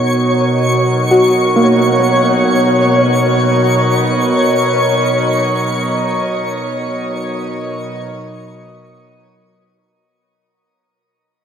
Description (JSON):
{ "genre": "ambient", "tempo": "free time", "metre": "none", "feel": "none", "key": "B major", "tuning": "A4 = 440 Hz", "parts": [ { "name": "warm analog pad", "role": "sustained chords", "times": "0.0-9.9 s", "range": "B2 to D#5", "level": "-19 LUFS", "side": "equal", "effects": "chorus" }, { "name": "soft round pluck", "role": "arpeggios", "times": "0.0-6.3 s", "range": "A#3 to C#5", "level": "-17 LUFS", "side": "equal", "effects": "lush chorus, diffuse ambient delay" }, { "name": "analog drone", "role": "drone", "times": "0.0-10.0 s", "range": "B2 to F#4", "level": "-18 LUFS", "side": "equal", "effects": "chorus" }, { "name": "twinkling granular texture", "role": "texture", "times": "0.0-10.0 s", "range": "C#5 to C#6", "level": "-16 LUFS", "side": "equal", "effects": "built-in reverb" } ], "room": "wet shimmer reverb, RT60 8.6 s", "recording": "none", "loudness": "-11 LUFS", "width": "side -8 dB against mid", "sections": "0.0-9.9 A section", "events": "fade-in on analog synth pad 0.0-9.9; fade-out 5.2-9.9", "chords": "0.0 Bmaj7" }